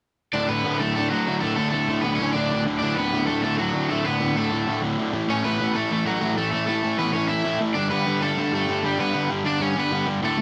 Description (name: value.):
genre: punk.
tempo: 194 BPM.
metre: 4/4.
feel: straight.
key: D major.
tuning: A4 = 440 Hz.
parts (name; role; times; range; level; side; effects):
crunchy overdriven guitar; melody; 0.3-10.4 s; F#3 to E5; -27 LUFS; equal; none.
distorted electric guitar; riff; 0.3-10.4 s; D2 to A3; -28 LUFS; equal; distortion.
overdriven semi-hollow guitar; riff; 0.3-10.4 s; D2 to A3; -29 LUFS; equal; none.
room: light reverb.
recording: none.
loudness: -23 LUFS.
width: mono.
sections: 0.3-10.2 A section.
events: none.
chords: 0.3 D; 5.1 A; 7.8 G.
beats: | 0.34 0.65 0.96 1.27 | 1.58 1.89 2.20 2.51 | 2.82 3.13 3.44 3.75 | 4.06 4.37 4.67 4.98 | 5.29 5.60 5.91 6.22 | 6.53 6.84 7.15 7.46 | 7.76 8.07 8.38 8.69 | 9.00 9.31 9.62 9.92 | 10.23.